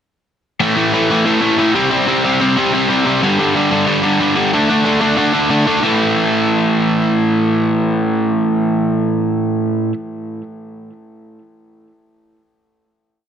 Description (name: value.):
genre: punk.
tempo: 184 BPM.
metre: 4/4.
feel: straight.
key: unclear.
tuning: A4 = 442 Hz.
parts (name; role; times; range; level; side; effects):
crunchy overdriven guitar; solo; 0.6-9.9 s; G2 to D4; -13 LUFS; equal; tape echo.
room: wet studio reverb, RT60 0.6 s.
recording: dense, heavily limited modern master.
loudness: -13 LUFS.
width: side -8 dB against mid.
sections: 0.6-5.8 riff; 5.8-8.4 final chord.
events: none.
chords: 0.6 A5; 1.7 C5; 3.2 G5; 4.5 D5; 5.8 A5.